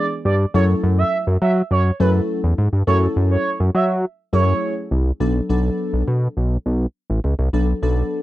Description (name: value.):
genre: dance-pop.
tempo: 103 BPM.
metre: 4/4.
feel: straight.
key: B dorian.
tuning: A4 = 440 Hz.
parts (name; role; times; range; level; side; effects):
expressive portamento lead; melody; 0.0-4.7 s; B4 to E5; -22 LUFS; right 4 dB; chorus, slapback echo.
glassy digital keys; accompaniment; 0.0-8.2 s; F#3 to A4; -23 LUFS; left 2 dB; chorus.
fat analog bass; bass; 0.3-8.0 s; A1 to F#3; -17 LUFS; equal; none.
room: little or no reverb.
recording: dry, close 1970s-style studio recording.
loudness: -17 LUFS.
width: side -15 dB against mid.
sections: 0.0-5.2 A section; 5.2-8.2 B section.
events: none.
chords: 0.0 N.C.; 0.5 F#m7; 5.2 Bm7.